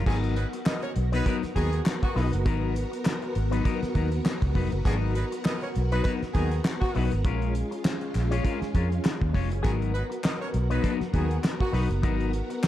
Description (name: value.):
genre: funk.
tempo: 100 BPM.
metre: 4/4.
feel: swing 56% on 16ths.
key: G# dorian.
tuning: A4 = 440 Hz.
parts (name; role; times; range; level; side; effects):
electric guitar with an envelope filter; accompaniment; 0.0-12.7 s; F#3 to C#5; -32 LUFS; left 7 dB; none.
string machine, violins; sustained chords; 0.0-12.7 s; G#3 to A#4; -34 LUFS; equal; ensemble chorus.
vintage muted fingered electric bass; bass; 0.0-12.4 s; E#1 to E#2; -26 LUFS; equal; none.
clear horn section; second line; 0.1-11.8 s; D#3 to D#5; -34 LUFS; right 1 dB; none.
cloth-damped thuddy drum kit; drums; 0.1-12.7 s; crash cymbal, hi-hat, kick drum, snare drum; -28 LUFS; equal; none.
group handclap; percussion; 0.7-12.7 s; none; -38 LUFS; left 2 dB; none.
room: light reverb, studio reverb.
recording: dark, warm production.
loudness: -24 LUFS.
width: side -13 dB against mid.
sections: 0.1-12.7 A section.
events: none.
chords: 0.1 G#m9; 7.2 A#m7; 9.6 G#m9.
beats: | 0.07 0.67 1.26 1.86 | 2.46 3.06 3.66 4.26 | 4.86 5.45 6.05 6.65 | 7.25 7.85 8.44 9.04 | 9.64 10.24 10.84 11.44 | 12.03 12.63.